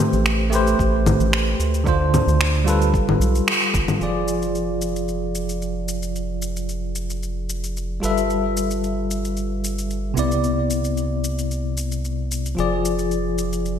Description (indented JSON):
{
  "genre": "sunset chillout",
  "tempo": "112 BPM",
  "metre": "4/4",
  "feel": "straight",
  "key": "unclear",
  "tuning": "A4 = 440 Hz",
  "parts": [
    { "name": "bell-like tine electric piano", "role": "accompaniment", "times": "0.0-13.8 s", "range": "C3 to E5", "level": "-22 LUFS", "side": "moving between left 4 dB and right 5 dB", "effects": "medium stereo tremolo, auto-pan, ping-pong delay" },
    { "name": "round analog bass", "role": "bass", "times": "0.1-13.8 s", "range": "F1 to D2", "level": "-24 LUFS", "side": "equal", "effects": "none" },
    { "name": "electronic shaker, finger snaps and congas", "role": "drums", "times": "0.1-13.8 s", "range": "none", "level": "-24 LUFS", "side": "left 2 dB", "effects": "overdrive" },
    { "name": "electronic kick drum", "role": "drums", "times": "0.8-3.9 s", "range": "none", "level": "-24 LUFS", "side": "equal", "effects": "overdrive" }
  ],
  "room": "wet lush hall reverb, RT60 1.8 s, digital ambience",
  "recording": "bright 1980s-style digital production",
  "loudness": "-19 LUFS",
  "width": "side -8 dB against mid",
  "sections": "0.0-4.0 A section; 4.0-13.8 B section",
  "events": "filter sweep on tine electric piano 0.0-4.0; band accent 3.5",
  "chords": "0.0 Am9; 1.9 Dm7; 2.9 G9; 4.0 Fm6; 8.0 G13; 10.2 Cmaj9; 12.6 Fm6"
}